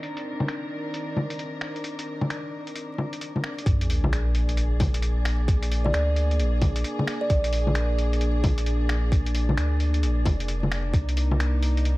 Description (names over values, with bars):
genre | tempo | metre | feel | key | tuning
future garage | 132 BPM | 4/4 | swing 62% on 16ths | unclear | A4 = 440 Hz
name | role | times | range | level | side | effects
dark studio string section | sustained chords | 0.0-12.0 s | Eb3 to Bb4 | -32 LUFS | equal | sidechain pumping
lo-fi sampler-style drum kit | drums | 0.0-12.0 s | bongos, finger snaps, hi-hat | -30 LUFS | left 1 dB | none
wind-like tuned noise texture | texture | 0.0-12.0 s | D5 | -40 LUFS | equal | built-in reverb
warm sub bass | bass | 3.7-12.0 s | F1 to D2 | -23 LUFS | equal | sidechain pumping
electronic kick drum | drums | 3.7-11.1 s | none | -22 LUFS | equal | none
sub drop | sound effects | 3.7-5.5 s | none | -31 LUFS | equal | none
kalimba | melody | 5.8-7.4 s | D5 | -31 LUFS | right 2 dB | analog delay
room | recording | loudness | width
light reverb, digital ambience | dark, warm production, vinyl crackle, low-pass filter | -22 LUFS | side -19 dB against mid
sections
0.0-3.7 A section; 3.7-12.0 B section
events
impact 3.7-5.5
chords
0.0 Cm9; 3.7 Bb7; 10.9 Cm9